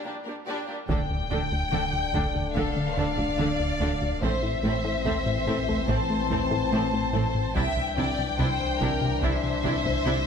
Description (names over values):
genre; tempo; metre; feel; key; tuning
cinematic, hybrid orchestral and electronic film score; 72 BPM; 4/4; straight; unclear; A4 = 440 Hz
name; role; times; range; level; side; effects
warm symphonic violin section; second line; 0.0-10.3 s; Bb3 to E5; -32 LUFS; left 2 dB; none
bright symphonic viola section; accompaniment; 0.0-10.1 s; G3 to A4; -34 LUFS; right 2 dB; none
plucky analog bass; riff; 0.1-10.2 s; C2 to A3; -30 LUFS; left 2 dB; none
rich symphonic cello section; bass; 0.1-10.1 s; A2 to D3; -34 LUFS; right 4 dB; none
rich symphonic double bass section; bass; 0.1-10.1 s; A1 to D2; -35 LUFS; right 4 dB; none
dark symphonic violin section; melody; 0.9-10.3 s; E5 to A5; -31 LUFS; left 3 dB; none
warm French horn section; sustained chords; 0.9-10.3 s; D3 to D4; -32 LUFS; left 5 dB; none
saturated sub bass; bass; 0.9-10.3 s; D1 to C2; -35 LUFS; right 1 dB; none
taiko ensemble; drums; 0.9-10.3 s; none; -34 LUFS; equal; none
room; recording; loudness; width
wet scoring stage reverb, RT60 2.0 s; high-pass filter; -24 LUFS; side -7 dB against mid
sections
0.9-10.3 A section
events
none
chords
0.0 Gm/Bb; 0.9 Dm; 4.2 Am; 7.6 Cadd9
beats
0.06 | 0.89 1.72 2.56 3.39 | 4.22 5.05 5.89 6.72 | 7.55 8.39 9.22 10.05